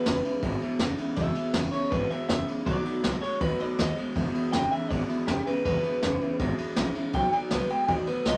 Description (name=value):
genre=rockabilly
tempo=161 BPM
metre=4/4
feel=straight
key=E major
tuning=A4 = 442 Hz
part: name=electric guitar through a small old amp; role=melody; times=0.0-8.4 s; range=G4 to G5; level=-32 LUFS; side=equal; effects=none
part: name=picked steel-string acoustic guitar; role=accompaniment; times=0.0-8.4 s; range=E2 to F#4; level=-36 LUFS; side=equal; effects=none
part: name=electric guitar through a small old amp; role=riff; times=0.0-8.4 s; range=E2 to G#3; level=-34 LUFS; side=equal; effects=none
part: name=upright bass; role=bass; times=0.1-8.4 s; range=E1 to D#2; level=-36 LUFS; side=equal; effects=none
part: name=jazz brush drum kit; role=drums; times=0.1-8.3 s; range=kick drum, ride cymbal, snare drum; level=-34 LUFS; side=equal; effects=none
room=moderate club ambience, RT60 0.5 s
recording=none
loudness=-28 LUFS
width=mono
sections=0.0-8.4 A section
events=none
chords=0.0 E; 2.7 B7; 4.2 E; 7.1 B7